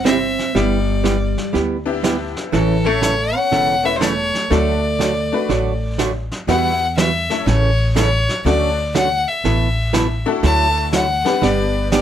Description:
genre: country, western swing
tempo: 121 BPM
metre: 4/4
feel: swing 66% on 8ths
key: D major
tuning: A4 = 444 Hz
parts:
  - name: archtop guitar, miked and amplified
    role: accompaniment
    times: 0.0-12.0 s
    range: B2 to A4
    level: -20 LUFS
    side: right 5 dB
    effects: none
  - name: upright bass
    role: bass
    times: 0.0-12.0 s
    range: E1 to E2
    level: -21 LUFS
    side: left 1 dB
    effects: none
  - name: clear fiddle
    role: melody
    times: 0.1-12.0 s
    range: A4 to A5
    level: -20 LUFS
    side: left 2 dB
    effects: none
  - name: vintage hollow-body jazz guitar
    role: second line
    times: 0.1-6.0 s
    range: E3 to C#4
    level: -21 LUFS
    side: right 2 dB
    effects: none
  - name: vintage brush drum kit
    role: drums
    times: 0.1-12.0 s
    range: brushed snare drum, hi-hat, snare drum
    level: -26 LUFS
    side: left 1 dB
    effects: none
  - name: tack piano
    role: accompaniment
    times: 1.9-11.9 s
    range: G3 to C#5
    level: -23 LUFS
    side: left 6 dB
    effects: none
room: light reverb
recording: none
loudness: -15 LUFS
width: side -10 dB against mid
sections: 0.0-6.5 A section; 6.5-12.0 B section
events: none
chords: 0.0 C; 0.5 G6; 2.5 A; 4.5 D; 6.5 Emadd9; 7.5 A; 8.5 Dmaj7; 9.4 Asus2; 10.4 Dadd9; 11.4 G

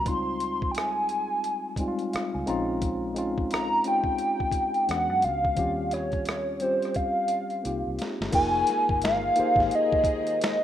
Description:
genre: R&B, neo-soul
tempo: 87 BPM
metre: 4/4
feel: swing 60% on 16ths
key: F minor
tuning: A4 = 442 Hz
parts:
  - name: hollow square lead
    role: melody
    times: 0.0-10.6 s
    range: C5 to C6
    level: -25 LUFS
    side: equal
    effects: chorus
  - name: tine electric piano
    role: accompaniment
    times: 0.0-10.6 s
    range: G3 to Bb5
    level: -30 LUFS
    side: left 2 dB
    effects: medium stereo tremolo
  - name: vintage muted fingered electric bass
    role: bass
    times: 0.0-9.7 s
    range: F1 to F#2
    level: -36 LUFS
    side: equal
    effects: none
  - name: boom bap sampler-style drum kit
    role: drums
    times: 0.1-10.6 s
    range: crash cymbal, finger snaps, hi-hat, kick drum, rim click, snare drum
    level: -31 LUFS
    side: equal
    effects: none
  - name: dark studio string section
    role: sustained chords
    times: 8.3-10.6 s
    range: Eb3 to Ab4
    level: -38 LUFS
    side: equal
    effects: none
room: light reverb, digital ambience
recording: rough home demo mix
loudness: -24 LUFS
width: side -11 dB against mid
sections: 0.0-8.3 A section; 8.3-10.6 B section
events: tine electric piano fill 1.8-2.8; drum fill 7.0-8.3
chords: 0.1 Dbmaj7; 2.5 Bbm7; 4.9 E9; 5.6 Eb13; 7.6 C7sus4; 8.3 Fm11

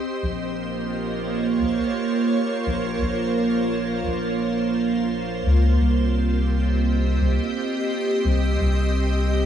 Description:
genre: ambient dub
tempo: 86 BPM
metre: 4/4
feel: swing 56% on 16ths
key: Bb dorian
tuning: A4 = 440 Hz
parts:
  - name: soft additive organ-like pad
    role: sustained chords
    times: 0.0-9.5 s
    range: Bb3 to Eb5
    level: -22 LUFS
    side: right 2 dB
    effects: ensemble chorus, built-in reverb
  - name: soft dub sub bass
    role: bass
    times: 0.2-9.5 s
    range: Bb1 to Db2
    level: -22 LUFS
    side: left 1 dB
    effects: none
room: wet echo chamber reverb, RT60 1.5 s, digital ambience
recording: small room ambience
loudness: -20 LUFS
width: side -9 dB against mid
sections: 0.0-9.5 A section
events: none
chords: 0.2 Bbmadd9; 5.8 Cm7

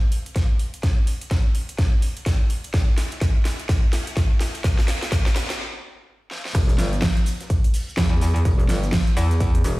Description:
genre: bass house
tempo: 126 BPM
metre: 4/4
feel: swing 60% on 16ths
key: E minor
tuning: A4 = 440 Hz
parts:
  - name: big-room dance drum kit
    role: drums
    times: 0.1-9.8 s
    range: crash cymbal, hi-hat, shaker, snare drum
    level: -28 LUFS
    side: equal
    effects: high-pass filter on hats, high-pass filter on snare, high-pass filter on cymbals, high-pass filter on perc, high-pass filter on room
  - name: electronic kick drum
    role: drums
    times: 0.4-9.5 s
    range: none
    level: -19 LUFS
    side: equal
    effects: none
  - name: metallic wobble bass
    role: bass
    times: 6.5-9.8 s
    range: E1 to E2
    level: -20 LUFS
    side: equal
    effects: distortion, chorus, sidechain pumping
  - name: vintage drum kit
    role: drums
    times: 6.6-9.8 s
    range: hi-hat, snare drum, tambourine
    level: -42 LUFS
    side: equal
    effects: sidechain pumping on hats, high-pass filter on hats, high-pass filter on snare, sidechain pumping on perc, high-pass filter on perc, high-pass filter on room
room: light reverb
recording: played on a big sound system in a bare room, stone room reverb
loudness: -19 LUFS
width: side -20 dB against mid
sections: 0.0-6.5 A section; 6.5-9.8 B section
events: build-up 0.0-6.5; drum fill 0.0-5.6, 6.3; stop 5.6-6.5; drop 6.5-9.8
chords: none

